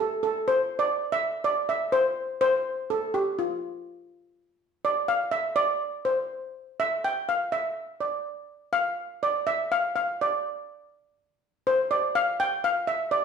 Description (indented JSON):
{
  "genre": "calypso",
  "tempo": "123 BPM",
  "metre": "4/4",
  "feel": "straight",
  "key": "unclear",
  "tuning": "A4 = 438 Hz",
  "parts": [
    { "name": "steel pan", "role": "solo", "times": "0.0-13.2 s", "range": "F4 to G5", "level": "-24 LUFS", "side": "equal", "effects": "none" }
  ],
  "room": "wet large studio reverb, RT60 0.8 s",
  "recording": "band playing live in one room",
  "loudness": "-24 LUFS",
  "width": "side -6 dB against mid",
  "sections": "0.0-13.2 A section",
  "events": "steel pan solo 0.0-13.2",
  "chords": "none"
}